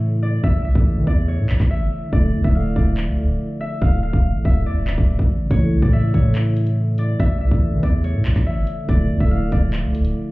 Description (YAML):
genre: hip hop, drill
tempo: 142 BPM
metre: 4/4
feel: half-time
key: D harmonic minor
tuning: A4 = 440 Hz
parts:
  - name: Celtic harp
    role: melody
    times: 0.0-10.3 s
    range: C#5 to F5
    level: -30 LUFS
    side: left 2 dB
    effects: tape echo
  - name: mellow tine electric piano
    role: accompaniment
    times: 0.0-10.3 s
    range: C#3 to A4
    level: -23 LUFS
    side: equal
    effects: ensemble chorus
  - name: long sustained 808-style bass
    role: bass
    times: 0.0-10.1 s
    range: D1 to E3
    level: -20 LUFS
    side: equal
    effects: none
  - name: drill drum kit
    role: drums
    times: 0.4-10.1 s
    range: handclaps, hi-hat, kick drum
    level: -18 LUFS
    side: equal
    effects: none
room: digital ambience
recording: heard muffled through a wall, club reverb, EQ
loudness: -16 LUFS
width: side -20 dB against mid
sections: 0.0-10.3 A section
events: break 0.0-5.5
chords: 0.0 A; 2.1 Dmadd9; 5.5 A; 8.9 Dmadd9